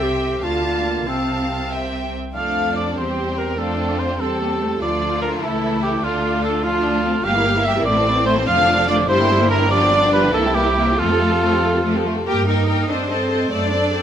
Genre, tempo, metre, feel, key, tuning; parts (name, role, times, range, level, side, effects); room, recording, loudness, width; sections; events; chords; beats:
quick classical-period movement for symphony orchestra; 97 BPM (dotted quarters); 6/8; straight; F major; A4 = 441 Hz
warm studio violin section; melody; 0.0-14.0 s; F4 to A5; -26 LUFS; left 2 dB
mellow clarinet; second line; 0.0-2.1 s; C4 to G4; -23 LUFS; equal
rich studio violin section; second line; 0.0-14.0 s; A3 to F5; -26 LUFS; left 1 dB
rich studio viola section; accompaniment; 0.0-14.0 s; C3 to Bb4; -23 LUFS; equal
rich studio double bass section; bass; 0.0-14.0 s; F1 to G2; -25 LUFS; right 1 dB
warm studio cello section; bass; 0.0-14.0 s; C3 to A4; -25 LUFS; right 1 dB
mellow cor anglais; second line; 2.4-12.1 s; F4 to F5; -20 LUFS; right 1 dB
moderate recital hall reverb, RT60 1.6 s; -16 LUFS; side -9 dB against mid
0.0-2.4 A section; 2.4-12.3 B section; 12.3-14.0 C section
0.4 Dm; 1.1 F/C; 2.4 F; 3.0 C/E; 3.6 F; 4.8 Dm; 5.4 A/C#; 6.0 Dm; 7.2 Edim/G; 7.9 Am; 8.5 Dm/F; 9.1 Gm; 9.7 G7; 10.3 C7; 11.0 F; 12.3 Gm; 12.9 Am7b5/G; 13.5 D7/F#
0.43 | 1.07 1.72 | 2.36 2.98 | 3.59 4.20 | 4.81 5.42 | 6.03 6.64 | 7.25 7.86 | 8.47 9.09 | 9.71 10.34 | 10.98 11.63 | 12.27 12.90 | 13.51